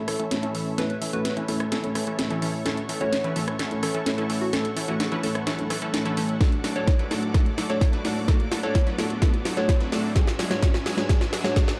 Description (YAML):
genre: EDM, festival progressive house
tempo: 128 BPM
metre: 4/4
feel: straight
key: A major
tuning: A4 = 437 Hz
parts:
  - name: dark grand piano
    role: accompaniment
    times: 0.0-11.7 s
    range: G#2 to A4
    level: -33 LUFS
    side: equal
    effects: sidechain pumping, delay
  - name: lush unison pad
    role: sustained chords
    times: 0.0-11.8 s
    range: A4 to E6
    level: -39 LUFS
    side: equal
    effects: chorus, vintage 12-bit sampler grit, sidechain pumping
  - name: supersaw stab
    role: riff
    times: 0.0-11.7 s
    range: E3 to B4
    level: -32 LUFS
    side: equal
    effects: sidechain pumping, low-pass filter, delay
  - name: detuned saw bass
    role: bass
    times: 0.0-11.8 s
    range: none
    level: barely audible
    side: none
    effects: none
  - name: riser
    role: sound effects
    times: 5.6-11.8 s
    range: none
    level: -42 LUFS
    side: equal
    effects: none
  - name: soft struck synth lead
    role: melody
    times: 0.1-11.5 s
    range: F#4 to C#5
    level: -35 LUFS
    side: equal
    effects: chorus, delay
  - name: house drum kit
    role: drums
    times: 0.1-11.8 s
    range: hi-hat, rim click, snare drum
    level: -32 LUFS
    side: equal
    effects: overdrive
  - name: electronic kick drum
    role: drums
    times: 6.4-11.7 s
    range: none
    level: -23 LUFS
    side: equal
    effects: none
room: light reverb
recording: dark, warm production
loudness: -25 LUFS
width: mono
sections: 0.0-11.8 A section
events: build-up 0.0-11.8; drum fill 0.0-11.8; filter sweep on supersaw synth 0.0-11.8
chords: 0.0 A; 6.4 D/A; 10.2 E/A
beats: 0.31 | 0.78 1.25 1.72 2.19 | 2.66 3.12 3.59 4.06 | 4.53 5.00 5.47 5.94 | 6.41 6.88 7.34 7.81 | 8.28 8.75 9.22 9.69 | 10.16 10.62 11.09 11.56